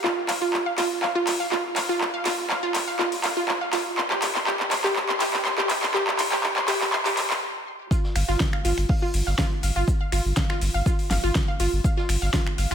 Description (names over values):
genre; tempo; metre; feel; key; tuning
progressive house; 122 BPM; 4/4; straight; unclear; A4 = 440 Hz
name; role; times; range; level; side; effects
wide unison pluck; arpeggios; 0.0-12.7 s; F4 to C6; -26 LUFS; right 1 dB; vintage 12-bit sampler grit, sidechain pumping, digital delay
deep house drum kit; drums; 0.0-12.7 s; finger snaps, handclaps, hi-hat, snare drum; -25 LUFS; equal; overdrive, sidechain pumping on hats
electronic kick drum; drums; 7.9-12.4 s; none; -24 LUFS; equal; overdrive
vintage drum kit; drums; 7.9-12.7 s; hi-hat, shaker, snare drum; -39 LUFS; equal; sidechain pumping on hats, high-pass filter on hats, high-pass filter on snare, sidechain pumping on perc, high-pass filter on perc, high-pass filter on room
saturated sub bass; bass; 8.2-12.7 s; G1; -24 LUFS; equal; sidechain pumping
room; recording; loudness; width
moderate lush hall reverb, RT60 1.7 s, studio ambience; high-pass filter; -21 LUFS; side -8 dB against mid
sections
0.0-7.9 A section; 7.9-12.7 B section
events
build-up 0.0-7.9; drum fill 0.0-7.4; stop 7.4-7.9; drop 7.9-12.7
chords
0.0 N.C.; 4.0 C5; 7.9 G7(no3)